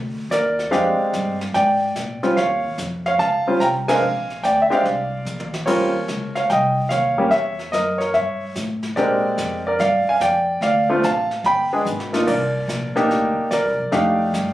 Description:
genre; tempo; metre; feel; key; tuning
jazz piano trio; 145 BPM; 4/4; swing 67% on 8ths; Bb major; A4 = 438 Hz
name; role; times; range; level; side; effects
upright bass; bass; 0.0-14.5 s; G1 to Bb2; -28 LUFS; equal; none
clear baby grand piano; melody; 0.3-14.5 s; G3 to B5; -18 LUFS; equal; none
jazz brush drum kit; drums; 0.3-14.5 s; brushed snare drum, crash cymbal, hi-hat, kick drum, ride cymbal, snare drum, toms; -32 LUFS; equal; none
room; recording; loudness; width
light reverb; recorded on a phone in the room, club reverb; -17 LUFS; side -14 dB against mid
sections
0.0-14.5 A section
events
band accent 3.8; drum fill 5.3-5.7, 11.9-12.3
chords
0.0 Bb13; 2.4 Eb7sus2; 4.0 Bb9; 5.7 Eb13; 7.3 Edim7; 9.0 Bb13; 10.6 Dm; 11.4 G(b9); 12.3 Cm7; 13.9 F13

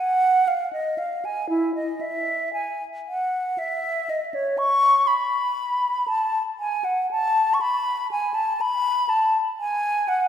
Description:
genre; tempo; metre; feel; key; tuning
classical, baroque-style fantasia for unaccompanied flute; 60 BPM; 3/4; rubato; unclear; A4 = 440 Hz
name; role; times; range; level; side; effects
mellow silver concert flute; solo; 0.0-10.3 s; E4 to C#6; -20 LUFS; equal; none
room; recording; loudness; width
wet concert hall reverb, RT60 2.0 s; heard from further back in the room; -21 LUFS; side -9 dB against mid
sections
0.0-10.3 A section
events
none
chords
none

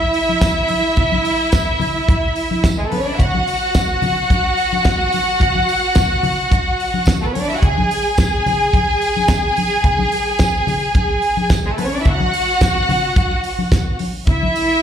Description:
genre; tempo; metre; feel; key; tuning
disco; 108 BPM; 4/4; straight; unclear; A4 = 438 Hz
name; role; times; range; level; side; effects
warm symphonic violin section; second line; 0.0-14.8 s; G#3 to G#5; -17 LUFS; equal; slapback echo
congas; percussion; 0.0-14.5 s; none; -24 LUFS; left 3 dB; slapback echo
damped 70s drum kit; drums; 0.1-14.7 s; hi-hat, kick drum, snare drum; -18 LUFS; equal; none
tambourine; percussion; 0.4-13.9 s; none; -32 LUFS; right 3 dB; none
room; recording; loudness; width
light reverb, small room ambience; live gig heard through the venue's PA, club reverb; -14 LUFS; side -9 dB against mid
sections
0.0-14.8 A section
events
none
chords
none

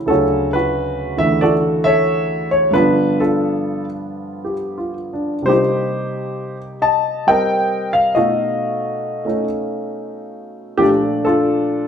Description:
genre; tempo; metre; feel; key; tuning
solo jazz; 90 BPM; 4/4; swing 68% on 8ths, rubato; unclear; A4 = 439 Hz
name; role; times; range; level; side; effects
warm concert grand piano; solo; 0.0-11.9 s; D2 to A5; -16 LUFS; equal; none
room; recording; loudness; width
wet stone room reverb, RT60 1.1 s; band playing live in one room; -15 LUFS; side -7 dB against mid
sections
0.0-11.9 A section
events
none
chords
0.1 Dmaj7; 2.7 G7; 5.5 Cm7; 8.2 B7#11; 10.8 Bbmaj7

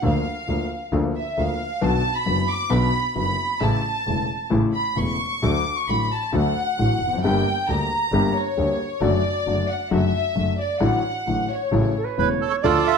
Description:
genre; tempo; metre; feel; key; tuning
tango; 133 BPM; 4/4; rubato; D major; A4 = 440 Hz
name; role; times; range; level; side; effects
warm grand piano; accompaniment; 0.0-12.8 s; E1 to G4; -24 LUFS; left 4 dB; none
clear double bass; bass; 0.0-12.8 s; E1 to D2; -26 LUFS; right 3 dB; none
warm studio violin section; second line; 0.1-13.0 s; C#5 to D6; -25 LUFS; equal; none
silver concert flute; second line; 12.0-12.7 s; A4 to C#5; -27 LUFS; right 11 dB; none
bandoneon; melody; 12.2-13.0 s; F4 to E5; -19 LUFS; right 10 dB; none
room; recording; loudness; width
moderate large studio reverb, RT60 1.1 s; none; -20 LUFS; side -6 dB against mid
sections
0.0-12.7 A section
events
violin section solo 0.0-12.7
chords
0.0 Bb/D; 1.8 Bm; 3.6 A; 5.4 D; 7.2 Gm; 9.0 D/F#; 10.8 D/A; 11.7 A6

